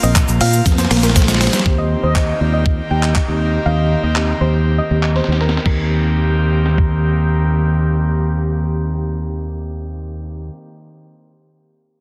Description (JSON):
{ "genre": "dance-pop", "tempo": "120 BPM", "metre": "4/4", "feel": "straight", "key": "Eb major", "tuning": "A4 = 440 Hz", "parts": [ { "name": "soft round pluck", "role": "melody", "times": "0.0-7.1 s", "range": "Bb4 to G5", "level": "-27 LUFS", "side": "equal", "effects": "chorus, sidechain pumping, dub echo" }, { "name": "mellow tine electric piano", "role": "accompaniment", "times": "0.0-10.5 s", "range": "Bb3 to C5", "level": "-29 LUFS", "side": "equal", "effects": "sidechain pumping" }, { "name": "airy breathy pad", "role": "sustained chords", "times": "0.0-10.4 s", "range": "Eb3 to G4", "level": "-26 LUFS", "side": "equal", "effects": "chorus, sidechain pumping" }, { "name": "direct-recorded clean electric guitar", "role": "riff", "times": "0.0-1.5 s", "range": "Bb3 to C4", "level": "-28 LUFS", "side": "equal", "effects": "none" }, { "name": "fingered electric bass", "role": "bass", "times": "0.0-10.5 s", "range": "Bb1 to Bb2", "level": "-19 LUFS", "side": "equal", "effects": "sidechain pumping" }, { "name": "clean 12-bit digital drum machine", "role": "drums", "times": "0.0-6.9 s", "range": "crash cymbal, handclaps, hi-hat, kick drum, shaker, snare drum", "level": "-19 LUFS", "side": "equal", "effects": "none" }, { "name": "tube shaker", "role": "percussion", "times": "0.0-1.6 s", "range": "none", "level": "-33 LUFS", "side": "equal", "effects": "none" }, { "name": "mellow horn-like synth lead", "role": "melody", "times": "1.7-5.1 s", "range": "C5 to Eb5", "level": "-29 LUFS", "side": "equal", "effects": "chorus, dub echo" } ], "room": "light reverb, digital ambience", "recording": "dense, heavily limited modern master, low-pass filter", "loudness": "-16 LUFS", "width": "mono", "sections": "0.0-1.7 A section; 1.7-5.7 B section; 5.7-9.7 C section", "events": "drop 0.0-1.7; drum fill 0.7-1.7, 5.2-5.7", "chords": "0.0 Bbsus2; 1.7 Eb6" }